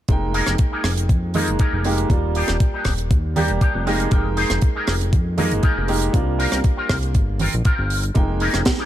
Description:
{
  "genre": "nu-disco, nu disco",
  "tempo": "119 BPM",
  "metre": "4/4",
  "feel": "swing 53% on 16ths",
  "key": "F dorian",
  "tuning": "A4 = 444 Hz",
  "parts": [
    { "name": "clear concert grand piano", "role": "accompaniment", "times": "0.1-8.9 s", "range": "G3 to G5", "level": "-25 LUFS", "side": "right 2 dB", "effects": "sidechain pumping, ping-pong delay" },
    { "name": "fat analog bass", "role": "bass", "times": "0.1-8.6 s", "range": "Eb1 to F2", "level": "-22 LUFS", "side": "equal", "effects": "none" },
    { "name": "electronic kick drum", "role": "drums", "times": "0.1-8.8 s", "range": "none", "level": "-18 LUFS", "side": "equal", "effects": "none" },
    { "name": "tight funk drum kit", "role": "drums", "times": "0.1-8.8 s", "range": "hi-hat, rim click, snare drum", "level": "-26 LUFS", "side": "right 2 dB", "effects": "none" },
    { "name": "electric guitar with an envelope filter", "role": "riff", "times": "0.3-8.9 s", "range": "C4 to C5", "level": "-26 LUFS", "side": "left 2 dB", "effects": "ensemble chorus, low-pass filter, ping-pong delay" },
    { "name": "congas", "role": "percussion", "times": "1.3-7.5 s", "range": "none", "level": "-27 LUFS", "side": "right 4 dB", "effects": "none" }
  ],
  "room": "small room ambience",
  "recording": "dark, warm production",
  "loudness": "-17 LUFS",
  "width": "side -12 dB against mid",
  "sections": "0.1-8.9 A section",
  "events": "none",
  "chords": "0.1 Fm11; 2.1 Ebmaj7; 3.9 Fm11; 6.1 C7sus4; 8.2 Fm11",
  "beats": "| 0.09 0.59 1.10 1.60 | 2.10 2.61 3.11 3.62 | 4.12 4.62 5.13 5.63 | 6.14 6.64 7.15 7.65 | 8.15 8.66"
}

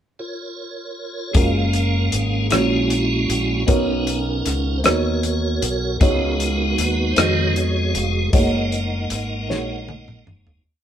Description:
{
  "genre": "slow gospel",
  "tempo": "52 BPM (dotted quarters)",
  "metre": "6/8",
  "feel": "straight",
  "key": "F# major",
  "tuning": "A4 = 440 Hz",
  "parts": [
    { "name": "tonewheel organ", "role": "sustained chords", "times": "0.2-10.6 s", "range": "D#3 to F#5", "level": "-22 LUFS", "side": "right 2 dB", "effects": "slow rotary speaker, chorus vibrato" },
    { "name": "dark upright piano", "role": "accompaniment", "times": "1.3-10.7 s", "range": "A#2 to D#5", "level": "-24 LUFS", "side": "right 1 dB", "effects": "none" },
    { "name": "modern bright fingered electric bass", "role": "bass", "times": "1.3-10.6 s", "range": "E#1 to E#2", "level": "-23 LUFS", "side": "left 1 dB", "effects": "none" },
    { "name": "warm soul drum kit", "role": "drums", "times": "1.3-10.6 s", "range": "hi-hat, kick drum, rim click, snare drum, toms", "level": "-20 LUFS", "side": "left 1 dB", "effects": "none" }
  ],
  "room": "moderate stone room reverb, RT60 1.3 s",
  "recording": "band playing live in one room",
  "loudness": "-17 LUFS",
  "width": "side -10 dB against mid",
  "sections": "0.0-1.3 pickup bar; 1.3-10.7 A section",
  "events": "tonewheel organ solo 1.3-10.7; fade-out 8.3-10.7; drum fill 9.5-10.7",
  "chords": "0.0 A#m/E#; 1.3 F#maj9; 2.5 F#7/A#; 3.7 Bmaj9; 6.0 C#9sus4; 8.3 F#69",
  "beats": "0.18 | 1.35 2.51 | 3.68 4.84 | 6.01 7.17 | 8.34 9.50"
}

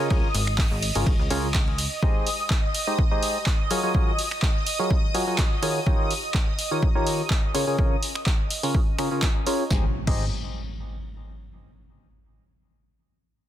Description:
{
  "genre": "piano house",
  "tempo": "125 BPM",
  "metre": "4/4",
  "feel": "swing 53% on 16ths",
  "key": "Ab major",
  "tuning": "A4 = 440 Hz",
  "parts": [
    { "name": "analog string pad", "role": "sustained chords", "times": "0.0-9.7 s", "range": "Eb5 to Eb6", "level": "-32 LUFS", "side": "right 1 dB", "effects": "ensemble chorus, phaser, sidechain pumping" },
    { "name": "percussive organ stab", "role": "riff", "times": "0.0-10.2 s", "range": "Db3 to Eb5", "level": "-27 LUFS", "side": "equal", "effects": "chorus, sidechain pumping, ping-pong delay" },
    { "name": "plucky analog bass", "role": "bass", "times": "0.1-1.9, 9.7-10.3 s", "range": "Ab1 to Db2", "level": "-28 LUFS", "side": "equal", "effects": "sidechain pumping" },
    { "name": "cloth-damped thuddy drum kit", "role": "drums", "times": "0.1-1.9 s", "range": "hi-hat, ride cymbal, snare drum", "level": "-40 LUFS", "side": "left 2 dB", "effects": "high-pass filter on cymbals, high-pass filter on hats, high-pass filter on snare, high-pass filter on room" },
    { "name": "electronic kick drum", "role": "drums", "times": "0.1-10.2 s", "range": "none", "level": "-23 LUFS", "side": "equal", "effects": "none" },
    { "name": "punchy analog drum machine", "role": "drums", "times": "0.3-10.2 s", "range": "crash cymbal, finger snaps, handclaps, hi-hat, snare drum", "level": "-29 LUFS", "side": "right 1 dB", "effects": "none" },
    { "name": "impact", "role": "sound effects", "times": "9.7-11.6 s", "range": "none", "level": "-33 LUFS", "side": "equal", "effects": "none" }
  ],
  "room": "light reverb, small room reverb",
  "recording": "dense, heavily limited modern master",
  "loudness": "-21 LUFS",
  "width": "side -12 dB against mid",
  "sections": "0.0-9.7 A section; 9.7-11.6 B section",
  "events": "filter sweep on synth stab 0.0-9.7",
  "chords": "0.0 Db6; 2.0 Abmaj7; 3.7 Gbmaj9; 5.9 Eb9; 7.5 Db6; 9.7 Abmaj7",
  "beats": "| 0.10 0.58 1.06 1.54 | 2.02 2.50 2.98 3.46 | 3.94 4.42 4.91 5.38 | 5.87 6.34 6.83 7.30 | 7.79 8.27 8.74 9.22 | 9.71 10.19 10.66 11.14"
}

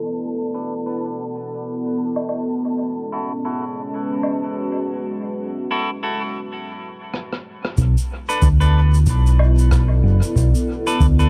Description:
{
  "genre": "ambient dub",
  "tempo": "93 BPM",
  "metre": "4/4",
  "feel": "swing 59% on 16ths",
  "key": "B dorian",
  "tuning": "A4 = 445 Hz",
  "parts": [
    { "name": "deep dark ambient pad", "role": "sustained chords", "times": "0.0-11.3 s", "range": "G#3 to F#5", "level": "-27 LUFS", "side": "equal", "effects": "chorus, built-in reverb" },
    { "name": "bubbling stepped-filter texture", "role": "texture", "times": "0.0-6.5 s", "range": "A5", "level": "-40 LUFS", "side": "equal", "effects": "chorus, built-in reverb" },
    { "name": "clean electric guitar", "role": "stabs", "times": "0.5-11.3 s", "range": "D4 to B4", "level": "-30 LUFS", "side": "equal", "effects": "low-pass filter, dub echo" },
    { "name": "woodblock, rim click and shaker", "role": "drums", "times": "2.2-11.3 s", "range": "none", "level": "-32 LUFS", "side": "equal", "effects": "low-pass filter on snare, low-pass filter on perc, low-pass filter on room, dub echo" },
    { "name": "fingered electric bass", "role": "bass", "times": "7.8-11.3 s", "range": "F#1 to D2", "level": "-16 LUFS", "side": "equal", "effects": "none" },
    { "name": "electronic kick drum", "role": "drums", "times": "7.8-11.2 s", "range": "none", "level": "-23 LUFS", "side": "equal", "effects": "none" }
  ],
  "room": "small room reverb",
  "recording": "dark, warm production, low-pass filter",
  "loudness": "-20 LUFS",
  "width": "mono",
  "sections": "0.0-7.8 A section; 7.8-11.3 B section",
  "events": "filter sweep on clean electric guitar 0.0-7.8; filter sweep 0.0-7.8; break 6.5-7.8; drum fill 7.1-7.8",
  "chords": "0.0 Bm7; 2.6 F#m7; 7.8 Bm7",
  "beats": "| 0.04 0.68 1.32 1.97 | 2.62 3.26 3.91 4.55 | 5.20 5.84 6.49 7.13 | 7.78 8.42 9.07 9.71 | 10.36 11.00"
}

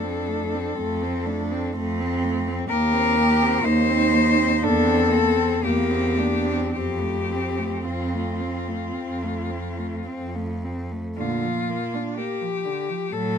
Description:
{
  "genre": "classical, lyrical piece for cello ensemble",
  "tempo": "53-64 BPM",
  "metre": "4/4",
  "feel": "rubato",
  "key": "Bb major",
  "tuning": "A4 = 441 Hz",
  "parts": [
    { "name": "rich cello", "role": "melody", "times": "0.0-13.4 s", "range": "F4 to C5", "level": "-25 LUFS", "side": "left 6 dB", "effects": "none" },
    { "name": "rich cello", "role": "second line", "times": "0.0-13.4 s", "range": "D3 to G4", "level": "-28 LUFS", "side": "right 6 dB", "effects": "none" },
    { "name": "rich cello", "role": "accompaniment", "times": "0.0-13.4 s", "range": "F#3 to C4", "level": "-29 LUFS", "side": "left 3 dB", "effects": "none" },
    { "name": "warm cello", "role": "bass", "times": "0.0-13.4 s", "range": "Eb2 to Bb2", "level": "-26 LUFS", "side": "right 2 dB", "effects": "none" }
  ],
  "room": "little or no reverb",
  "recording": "close, detailed microphones",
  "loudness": "-21 LUFS",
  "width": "side -7 dB against mid",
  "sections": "0.0-11.2 A section; 11.2-13.4 B section",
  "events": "none",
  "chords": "0.0 F; 2.7 Cm7/Eb; 4.6 C7/E; 6.7 F; 11.2 Bb",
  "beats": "0.78 1.75 | 2.71 3.66 4.63 5.64 | 6.75 7.86 8.96 10.08 | 11.18 12.16 13.14"
}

